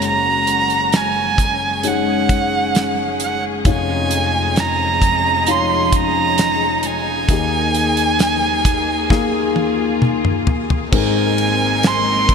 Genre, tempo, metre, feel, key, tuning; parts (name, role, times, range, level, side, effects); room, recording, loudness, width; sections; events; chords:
pop ballad; 66 BPM; 4/4; straight; Ab mixolydian; A4 = 440 Hz
dark violin; melody; 0.0-12.3 s; Gb5 to C6; -18 LUFS; right 4 dB
dark grand piano; accompaniment; 0.0-12.3 s; F1 to Bb4; -20 LUFS; left 4 dB; wide subtle chorus
warm studio string section; sustained chords; 0.0-12.3 s; F3 to Bb4; -25 LUFS; equal
damped 70s drum kit; drums; 0.0-12.3 s; crash cymbal, hi-hat, kick drum, ride cymbal, snare drum, toms; -19 LUFS; equal
moderate lush hall reverb, RT60 3.0 s; bright 1980s-style digital production; -14 LUFS; side -6 dB against mid
0.0-10.9 A section; 10.9-12.3 B section
drum fill 9.1-10.9
0.0 Gbsus2; 3.7 Dbadd9/F; 7.3 Ebsus4; 10.9 Abadd9